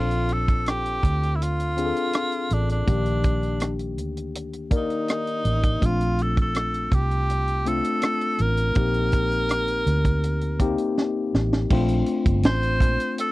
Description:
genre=lush 1970s-style soul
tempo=82 BPM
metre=4/4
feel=straight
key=Bb major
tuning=A4 = 440 Hz
part: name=bright tenor saxophone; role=melody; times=0.0-13.3 s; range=D4 to C5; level=-26 LUFS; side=right 1 dB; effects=none
part: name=tine electric piano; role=accompaniment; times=0.0-13.3 s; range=Eb3 to D5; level=-27 LUFS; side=left 4 dB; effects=none
part: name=vintage muted fingered electric bass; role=bass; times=0.0-13.0 s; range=G1 to D2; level=-24 LUFS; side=right 1 dB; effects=none
part: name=tight funk drum kit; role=drums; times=0.1-13.3 s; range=crash cymbal, hi-hat, kick drum, rim click, snare drum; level=-22 LUFS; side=right 1 dB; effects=none
room=little or no reverb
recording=dry, close 1970s-style studio recording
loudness=-21 LUFS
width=side -18 dB against mid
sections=0.0-11.7 A section; 11.7-13.3 B section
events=drum fill 11.0-11.7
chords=0.0 Bbmaj9; 2.9 Ebmaj7; 5.8 Dm7/Bb; 8.8 Cm9; 11.7 Bbmaj9

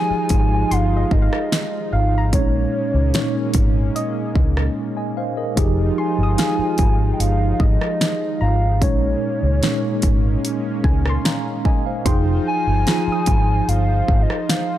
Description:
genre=contemporary R&B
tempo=74 BPM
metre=4/4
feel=straight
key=F minor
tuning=A4 = 440 Hz
part: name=hollow clarinet-like synth lead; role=melody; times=0.0-14.8 s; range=Db5 to Ab5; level=-24 LUFS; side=equal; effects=chorus
part: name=mellow tine electric piano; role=accompaniment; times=0.0-14.8 s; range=Bb2 to Bb5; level=-23 LUFS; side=right 1 dB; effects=medium stereo tremolo
part: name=warm analog pad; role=sustained chords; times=0.0-14.8 s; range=F3 to C5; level=-28 LUFS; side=equal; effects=chorus
part: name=vintage muted fingered electric bass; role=bass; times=0.1-14.2 s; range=F1 to Db2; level=-19 LUFS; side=equal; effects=none
part: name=pop drum kit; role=drums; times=0.3-14.7 s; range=hi-hat, kick drum, rim click, snare drum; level=-20 LUFS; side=equal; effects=none
part: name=soft round pluck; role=texture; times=0.7-14.8 s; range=Eb5 to Eb6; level=-33 LUFS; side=left 2 dB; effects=chorus, digital delay
room=light reverb, digital ambience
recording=dark, warm production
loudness=-16 LUFS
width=side -12 dB against mid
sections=0.0-14.8 A section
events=break 4.8-5.6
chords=0.0 Fm9; 2.3 Bbm11; 5.6 Fm9; 8.8 Bbm11; 12.1 Fm9

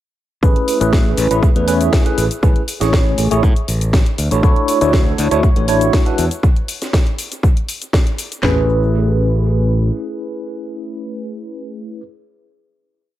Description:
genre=filtered disco house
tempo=120 BPM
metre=4/4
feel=straight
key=A major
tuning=A4 = 440 Hz
part: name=tine electric piano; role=accompaniment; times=0.4-12.0 s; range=G#3 to C#5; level=-18 LUFS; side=equal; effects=fast stereo tremolo, phaser, sidechain pumping
part: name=modern bright fingered electric bass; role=bass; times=0.4-9.9 s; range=A1 to A2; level=-18 LUFS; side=equal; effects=sidechain pumping
part: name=house drum kit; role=drums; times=0.4-8.6 s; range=handclaps, kick drum, snare drum, toms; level=-14 LUFS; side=equal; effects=none
part: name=house drum kit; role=drums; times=0.4-8.4 s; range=hi-hat, shaker, snare drum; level=-23 LUFS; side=left 1 dB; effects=analog delay
room=light reverb, digital ambience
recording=echo-heavy mix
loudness=-13 LUFS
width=side -13 dB against mid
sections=0.4-8.4 drop; 8.4-12.4 final chord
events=drop 0.4-8.4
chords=0.4 Amaj9; 4.2 Dmaj7; 6.2 N.C.; 8.4 Amaj9

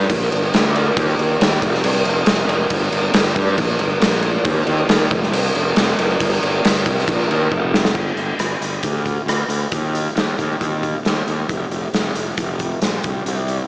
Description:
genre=quiet-loud alternative rock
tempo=137 BPM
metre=4/4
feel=straight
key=G minor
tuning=A4 = 437 Hz
part: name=fuzz fingered electric bass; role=bass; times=0.0-13.6 s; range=F1 to G2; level=-20 LUFS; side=equal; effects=overdrive
part: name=oversized low-tuned drum kit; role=drums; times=0.0-13.6 s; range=crash cymbal, hi-hat, kick drum, rim click, snare drum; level=-18 LUFS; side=equal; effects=none
room=light reverb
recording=small speaker sound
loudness=-16 LUFS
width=side -24 dB against mid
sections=0.0-8.0 A section; 8.0-13.7 B section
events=drum fill 7.5-8.0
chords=none

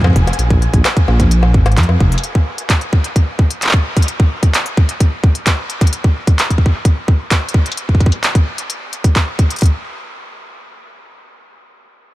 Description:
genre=IDM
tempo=130 BPM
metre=4/4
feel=straight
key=unclear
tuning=A4 = 439 Hz
part: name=dark detuned saw bass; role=bass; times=0.0-2.2 s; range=F1 to F2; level=-12 LUFS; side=equal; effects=none
part: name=electronic kick drum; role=drums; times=0.0-9.7 s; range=none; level=-12 LUFS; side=equal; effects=none
part: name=organic electronic drum kit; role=drums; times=0.0-9.7 s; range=bongos, handclaps, hi-hat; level=-20 LUFS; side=equal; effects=diffuse ambient delay
part: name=flickering grainy texture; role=texture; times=0.0-2.2 s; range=Ab5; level=-32 LUFS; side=equal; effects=none
room=light reverb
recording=none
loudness=-12 LUFS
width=side -17 dB against mid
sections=0.0-9.6 A section; 9.6-12.1 B section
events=none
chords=0.0 Bb7(no3); 2.2 N.C.

